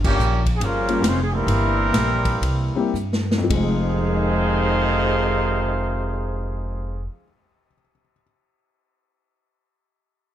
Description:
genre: jazz, big band swing.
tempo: 103-146 BPM.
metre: 4/4.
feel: swing 65% on 8ths.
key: F minor.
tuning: A4 = 439 Hz.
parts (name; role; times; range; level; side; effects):
upright bass; bass; 0.0-7.1 s; F1 to G2; -23 LUFS; equal; none.
swinging big-band drum kit; drums; 0.0-3.7 s; crash cymbal, hi-hat, kick drum, ride cymbal, snare drum; -26 LUFS; equal; none.
mellow trumpet section; melody; 0.1-7.1 s; G3 to F5; -24 LUFS; equal; none.
bright trombone section; second line; 0.1-7.1 s; F2 to C4; -27 LUFS; right 2 dB; none.
warm grand piano; accompaniment; 0.9-8.2 s; F2 to Bb6; -26 LUFS; left 4 dB; none.
room: light reverb.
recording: none.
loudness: -19 LUFS.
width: side -11 dB against mid.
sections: 0.0-3.5 A section; 3.5-8.1 B section.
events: band accent 0.0; slowing down 0.0-3.5; drum fill 2.9-3.5.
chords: 0.0 Gm7b5; 1.5 C7; 3.5 Fm7.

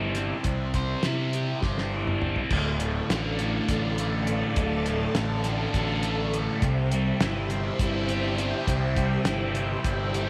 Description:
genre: psychedelic rock.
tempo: 204 BPM (eighths).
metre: 7/8.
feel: straight.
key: D minor.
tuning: A4 = 440 Hz.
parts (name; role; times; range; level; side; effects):
biting overdriven guitar; riff; 0.0-10.3 s; D2 to C5; -30 LUFS; equal; phaser.
fuzz fingered electric bass; bass; 0.0-10.3 s; D1 to C3; -31 LUFS; equal; overdrive.
cloth-damped thuddy drum kit; drums; 0.1-10.3 s; crash cymbal, hi-hat, kick drum, snare drum, toms; -31 LUFS; equal; none.
string machine, full ensemble; sustained chords; 2.5-10.3 s; G4 to A5; -36 LUFS; equal; phaser, ensemble chorus.
room: moderate echo chamber reverb, RT60 1.3 s, small room ambience.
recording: none.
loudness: -27 LUFS.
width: mono.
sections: 0.0-2.5 A section; 2.5-10.3 B section.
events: drum fill 1.6-2.5.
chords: 0.0 C; 2.5 Dm; 6.6 C.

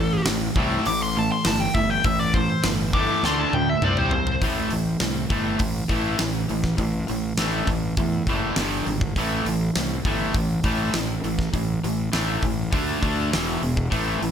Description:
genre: hard rock.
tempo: 101 BPM.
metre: 4/4.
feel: straight.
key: A minor.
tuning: A4 = 440 Hz.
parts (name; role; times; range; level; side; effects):
high-gain lead guitar; melody; 0.0-4.4 s; A4 to D6; -26 LUFS; left 1 dB; distortion, tape echo.
cranked stack guitar; riff; 0.0-14.3 s; E2 to D4; -28 LUFS; left 10 dB; overdrive.
cranked stack guitar; riff; 0.0-14.3 s; E2 to D4; -27 LUFS; right 9 dB; overdrive.
fuzz fingered electric bass; bass; 0.0-14.3 s; E1 to E2; -28 LUFS; equal; overdrive.
huge arena drum kit; drums; 0.3-14.3 s; hi-hat, kick drum, snare drum, toms; -26 LUFS; equal; none.
room: light reverb, studio reverb.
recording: none.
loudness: -20 LUFS.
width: side -8 dB against mid.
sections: 0.0-4.4 A section; 4.4-14.3 B section.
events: lead electric guitar solo 0.0-4.4; drum fill 3.2-4.4.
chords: 0.0 A5; 3.2 D5; 3.8 C5; 4.4 A5; 8.6 G5; 9.2 A5; 12.7 D5; 13.3 E5.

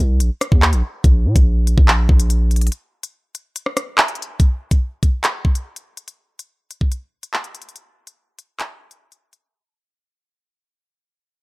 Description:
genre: hip hop, drill.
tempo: 143 BPM.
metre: 4/4.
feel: half-time.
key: C minor.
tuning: A4 = 439 Hz.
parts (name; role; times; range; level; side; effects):
long sustained 808-style bass; bass; 0.0-2.7 s; Bb1 to Bb2; -16 LUFS; equal; none.
drill drum kit; drums; 0.2-9.4 s; handclaps, hi-hat, kick drum, rim click; -15 LUFS; equal; none.
room: digital ambience.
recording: none.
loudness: -15 LUFS.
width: side -23 dB against mid.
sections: 0.0-4.4 A section; 4.4-11.1 B section.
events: break 2.7-4.4, 9.4-11.1; fade-out 4.4-11.1.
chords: none.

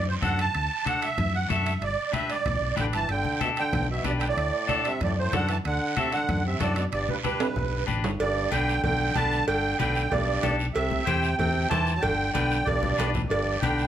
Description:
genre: latin, cumbia.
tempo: 188 BPM.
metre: 4/4.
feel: straight.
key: G major.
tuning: A4 = 440 Hz.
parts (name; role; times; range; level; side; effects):
musette accordion; melody; 0.0-13.9 s; B4 to A5; -28 LUFS; right 4 dB; plate reverb.
hollow-body short-scale fingered electric bass; bass; 0.0-13.9 s; G1 to F#2; -29 LUFS; left 1 dB; none.
clean electric guitar; accompaniment; 0.2-13.9 s; D4 to C5; -30 LUFS; left 5 dB; none.
congas; percussion; 0.2-13.8 s; none; -33 LUFS; left 2 dB; none.
guiro; percussion; 0.2-13.9 s; none; -40 LUFS; right 6 dB; none.
timbales and cowbell; percussion; 0.2-13.8 s; none; -33 LUFS; right 3 dB; none.
brilliant trombone; second line; 2.8-13.9 s; G2 to F#3; -32 LUFS; right 1 dB; none.
room: moderate studio reverb, RT60 0.6 s.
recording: none.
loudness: -23 LUFS.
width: side -10 dB against mid.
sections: 0.0-8.2 A section; 8.2-13.9 B section.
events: drum fill 7.4-8.2, 12.8-13.3.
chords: 0.0 D; 1.8 G; 4.4 D; 6.9 G; 10.8 C; 12.0 G.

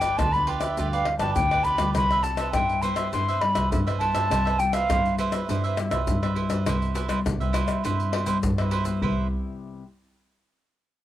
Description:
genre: samba and choro.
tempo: 102 BPM.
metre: 4/4.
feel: straight.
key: C major.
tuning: A4 = 439 Hz.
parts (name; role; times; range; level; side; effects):
breathy mellow jazz flute; melody; 0.0-6.3 s; E5 to C6; -25 LUFS; equal; cassette tape.
cavaquinho; accompaniment; 0.0-9.3 s; E4 to E5; -30 LUFS; right 7 dB; cassette tape.
nylon-string guitar; accompaniment; 0.0-9.8 s; G2 to E4; -32 LUFS; left 4 dB; cassette tape.
rich double bass; bass; 0.0-9.3 s; G1 to G2; -28 LUFS; right 1 dB; none.
tube shaker, pandeiro, tamborim and surdo; percussion; 0.0-9.2 s; none; -30 LUFS; left 3 dB; none.
room: light reverb, small room ambience.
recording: home recording on cassette.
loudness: -22 LUFS.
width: side -12 dB against mid.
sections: 0.0-6.7 A section; 6.7-9.0 B section; 9.0-11.0 C section.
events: none.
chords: 0.0 G7; 2.0 Cmaj7.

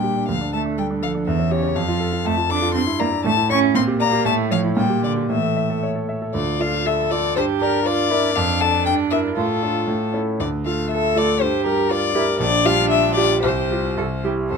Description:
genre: quick classical-period movement for piano trio.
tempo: 119 BPM.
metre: 2/4.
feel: rubato.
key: D minor.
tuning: A4 = 440 Hz.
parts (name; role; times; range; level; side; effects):
warm violin; melody; 0.0-14.6 s; A4 to D6; -22 LUFS; left 11 dB; none.
warm cello; second line; 0.0-14.6 s; C#3 to A4; -24 LUFS; right 9 dB; none.
clear concert grand piano; accompaniment; 0.0-14.6 s; Bb1 to E5; -21 LUFS; right 1 dB; none.
room: light reverb.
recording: close, detailed microphones.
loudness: -17 LUFS.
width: side -5 dB against mid.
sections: 0.0-6.4 A section; 6.4-14.5 B section.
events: none.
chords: 0.3 D5; 1.3 C#dim/E; 1.8 F; 2.8 Em7b5/G; 3.2 A; 3.8 Gm/Bb; 4.3 A; 4.8 Gm/Bb; 5.3 A; 6.4 Dm; 7.4 Gm; 8.4 Dm/F; 8.9 Em7b5/G; 9.4 Dm/A; 9.9 A; 10.4 Dm; 11.4 Gm; 12.4 Gm7/Bb; 13.4 Csus4; 14.0 C.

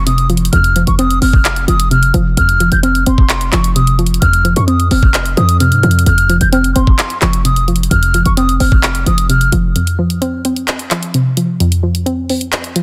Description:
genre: hip hop, trap.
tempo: 130 BPM.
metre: 4/4.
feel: half-time.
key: unclear.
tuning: A4 = 440 Hz.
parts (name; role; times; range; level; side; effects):
hollow concert flute; melody; 0.0-9.5 s; C6 to G6; -19 LUFS; equal; low-pass filter, tape echo.
soft round pluck; accompaniment; 0.0-12.8 s; F2 to C4; -18 LUFS; equal; chorus, low-pass filter.
hard-hitting 808-style bass; bass; 0.0-9.7 s; F1 to Ab2; -16 LUFS; equal; none.
trap drum kit; drums; 0.1-12.8 s; handclaps, hi-hat, kick drum; -18 LUFS; equal; none.
room: digital ambience.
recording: dense, heavily limited modern master.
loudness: -13 LUFS.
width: mono.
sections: 0.0-9.8 A section; 9.8-12.8 B section.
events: break 9.8-12.8.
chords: 0.0 F5.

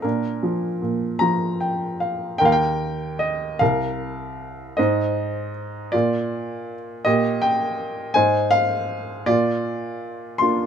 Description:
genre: classical, lyrical solo piano.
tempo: 50-55 BPM (dotted quarters).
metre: 6/8.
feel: rubato.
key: Eb major.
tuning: A4 = 440 Hz.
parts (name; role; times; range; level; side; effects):
warm upright piano; solo; 0.0-10.7 s; C2 to C6; -20 LUFS; equal; none.
room: light reverb.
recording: close, detailed microphones.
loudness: -20 LUFS.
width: side -8 dB against mid.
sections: 0.0-2.4 A section; 2.4-10.7 B section.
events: upright piano fill 1.2-2.4.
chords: 0.0 Bb; 2.4 Eb; 3.6 C7sus4; 4.8 Ab; 5.9 Bb; 7.1 Eb/Bb; 8.2 Ab6; 9.3 Bb.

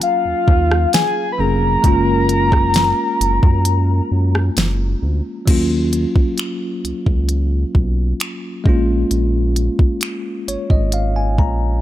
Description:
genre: contemporary R&B.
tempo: 66 BPM.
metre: 4/4.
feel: straight.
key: Eb minor.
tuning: A4 = 441 Hz.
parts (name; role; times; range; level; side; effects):
soft octave-layered synth lead; melody; 0.0-4.6 s; F5 to Cb6; -18 LUFS; left 1 dB; chorus, phaser, tape echo.
bell-like tine electric piano; accompaniment; 0.0-11.8 s; Gb3 to Bb5; -21 LUFS; left 1 dB; medium stereo tremolo.
smooth R&B drum kit; drums; 0.0-11.6 s; crash cymbal, finger snaps, hi-hat, kick drum, rim click, snare drum; -16 LUFS; equal; none.
smooth gliding synth bass; bass; 0.3-11.8 s; F1 to Gb2; -18 LUFS; equal; none.
room: little or no reverb.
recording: none.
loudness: -14 LUFS.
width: side -13 dB against mid.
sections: 0.0-5.5 A section; 5.5-11.8 B section.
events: break 3.7-5.5; tine electric piano fill 10.0-11.8.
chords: 0.0 Ebm9; 1.8 Gbmaj9; 5.5 Ebm9; 8.7 Bbm7.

